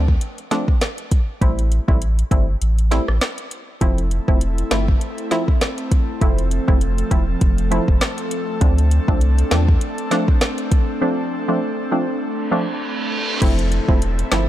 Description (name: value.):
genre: dancehall.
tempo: 100 BPM.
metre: 4/4.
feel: swing 56% on 16ths.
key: unclear.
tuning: A4 = 440 Hz.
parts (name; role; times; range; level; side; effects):
wavetable chord stab; accompaniment; 0.0-14.5 s; F3 to E4; -24 LUFS; right 1 dB; sidechain pumping.
warm sub bass; bass; 0.0-9.8, 13.4-14.5 s; E1 to E2; -18 LUFS; equal; none.
afro-pop drum kit; drums; 0.1-14.5 s; crash cymbal, hi-hat, kick drum, rim click, snare drum; -18 LUFS; equal; none.
airy breathy pad; sustained chords; 4.1-14.5 s; F3 to A4; -25 LUFS; equal; chorus, sidechain pumping.
reverse cymbal and downlifter; sound effects; 12.4-14.5 s; none; -27 LUFS; right 3 dB; none.
room: little or no reverb.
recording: dark, warm production.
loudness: -16 LUFS.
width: side -13 dB against mid.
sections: 0.0-3.8 A section; 3.8-13.4 B section; 13.4-14.5 C section.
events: break 2.6-3.8, 11.0-13.4; reverse cymbal 12.4-13.4.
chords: 0.0 Dm7; 1.4 Am7; 3.8 Fmaj7; 8.6 Dm7; 13.4 Fmaj7.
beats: 0.21 0.81 | 1.42 2.02 2.62 3.21 | 3.81 4.42 5.01 5.62 | 6.21 6.82 7.42 8.02 | 8.62 9.21 9.81 10.41 | 11.02 11.62 12.21 12.81 | 13.41 14.02.